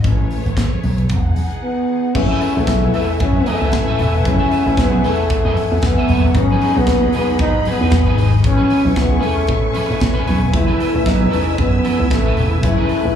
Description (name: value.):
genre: disco.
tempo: 114 BPM.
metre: 4/4.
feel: swing 56% on 16ths.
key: F# dorian.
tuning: A4 = 441 Hz.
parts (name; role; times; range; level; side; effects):
rich studio string section; sustained chords; 0.0-13.2 s; E3 to F#6; -26 LUFS; right 1 dB; plate reverb.
slap bass with an envelope filter; bass; 0.0-13.1 s; E1 to A2; -17 LUFS; equal; none.
modern studio drum kit; drums; 0.0-13.0 s; crash cymbal, hi-hat, kick drum, snare drum; -20 LUFS; right 1 dB; none.
congas; percussion; 0.0-12.9 s; none; -26 LUFS; left 5 dB; none.
growling trombone; melody; 1.6-13.2 s; A3 to E4; -19 LUFS; equal; plate reverb, slapback echo.
warm concert grand piano; accompaniment; 2.1-13.2 s; E3 to G#4; -23 LUFS; left 6 dB; plate reverb, slapback echo.
electric guitar at the edge of break-up; accompaniment; 2.2-13.1 s; C#4 to E5; -26 LUFS; right 2 dB; ensemble chorus, plate reverb, slapback echo.
room: light reverb.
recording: live gig heard through the venue's PA, club reverb, small room ambience.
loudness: -14 LUFS.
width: side -9 dB against mid.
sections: 0.0-2.1 A section; 2.1-13.2 B section.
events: none.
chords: 0.0 Amaj9; 1.1 Emaj9; 2.1 F#m11; 6.3 Emaj7/G# (rootless); 8.4 Amaj9; 10.5 F#m11.